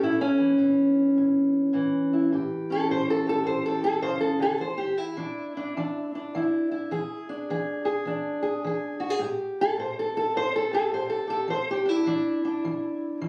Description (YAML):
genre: acoustic country blues, solo or duo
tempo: 105 BPM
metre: 4/4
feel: swing 63% on 8ths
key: A mixolydian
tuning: A4 = 438 Hz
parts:
  - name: fingerpicked steel-string acoustic guitar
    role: solo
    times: 0.0-13.3 s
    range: A2 to C5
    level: -26 LUFS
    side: equal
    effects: none
room: wet booth ambience, RT60 0.2 s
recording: recorded on a phone in the room, studio reverb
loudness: -26 LUFS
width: mono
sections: 0.0-13.3 A section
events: none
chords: 0.0 A7; 4.6 E7; 9.2 Am7; 11.5 E7(no3)